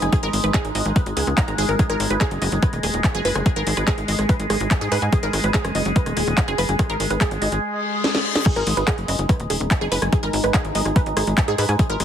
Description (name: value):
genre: psychedelic trance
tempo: 144 BPM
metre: 4/4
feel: straight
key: G# minor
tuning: A4 = 440 Hz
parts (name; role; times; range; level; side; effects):
- overtone-sweeping drone; sustained chords; 0.0-12.0 s; G#3 to G#4; -26 LUFS; equal; chorus, built-in reverb, sidechain pumping
- wide unison pluck; riff; 0.0-12.0 s; G#4 to A#5; -26 LUFS; moving between left 3 dB and right 4 dB; auto-pan, sidechain pumping, digital delay
- tight sequencer bass; bass; 0.0-12.0 s; D#1 to G#2; -23 LUFS; equal; tube saturation
- techno drum kit; drums; 0.0-12.0 s; crash cymbal, handclaps, hi-hat, rim click, snare drum; -25 LUFS; left 1 dB; none
- electronic kick drum; drums; 0.1-11.9 s; none; -18 LUFS; equal; none
- reverse cymbal; sound effects; 7.8-8.5 s; none; -26 LUFS; left 8 dB; none
room: light reverb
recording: heavily compressed radio sound, multiband compression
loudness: -18 LUFS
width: side -9 dB against mid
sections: 0.0-8.5 A section; 8.5-12.0 B section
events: reverse cymbal 7.8-8.5; drum fill 8.0-8.5; drop 8.5-12.0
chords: 0.0 G#5